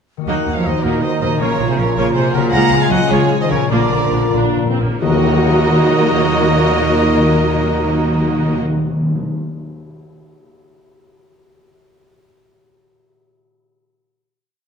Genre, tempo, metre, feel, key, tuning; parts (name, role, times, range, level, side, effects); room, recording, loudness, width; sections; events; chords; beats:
cinematic, heroic adventure film score; 86-108 BPM (dotted quarters); 6/8; straight; Eb minor; A4 = 440 Hz
concert harp; arpeggios; 0.2-9.5 s; Bb2 to Gb5; -23 LUFS; left 10 dB
warm symphonic violin section; melody; 0.3-8.6 s; Gb4 to Gb5; -24 LUFS; left 1 dB
bright large flute ensemble; second line; 0.3-8.6 s; Ab5 to Bb5; -26 LUFS; right 3 dB
clear clarinet; second line; 0.3-8.6 s; Eb4 to Gb4; -26 LUFS; left 2 dB
rich chamber violin section; second line; 0.3-8.6 s; Bb4 to Bb5; -25 LUFS; equal
warm oboe; second line; 0.3-8.6 s; Bb4 to Bb5; -24 LUFS; right 3 dB
rich symphonic viola section; accompaniment; 0.3-8.6 s; F3 to Gb4; -21 LUFS; right 2 dB
warm French horn section; sustained chords; 0.3-8.6 s; Ab3 to Gb4; -24 LUFS; left 4 dB
warm trombone section; sustained chords; 0.3-8.6 s; Bb2 to Gb3; -26 LUFS; right 4 dB
rich symphonic cello section; bass; 0.3-8.6 s; Bb2 to Bb3; -23 LUFS; right 3 dB
rich symphonic double bass section; bass; 0.3-8.6 s; Bb1 to Eb2; -22 LUFS; right 3 dB
timpani; percussion; 1.4-9.3 s; Bb2 to Eb3; -20 LUFS; left 1 dB
cymbal swell and tam-tam; percussion; 2.5-6.8 s; -25 LUFS; left 3 dB
wet recital hall reverb, RT60 1.7 s; dark, warm production; -13 LUFS; side -6 dB against mid
0.3-5.0 theme; 5.0-7.8 final chord
slowing down 2.0-5.0; timpani fill 3.7-5.0; band accent 5.0-5.5
0.3 Ebm; 1.4 Bbm; 2.5 Db; 3.7 Bb; 5.0 Ebm
| 0.28 0.84 | 1.40 1.96 | 2.52 3.09 | 3.70 4.34 | 5.02 5.72 | 6.42 7.12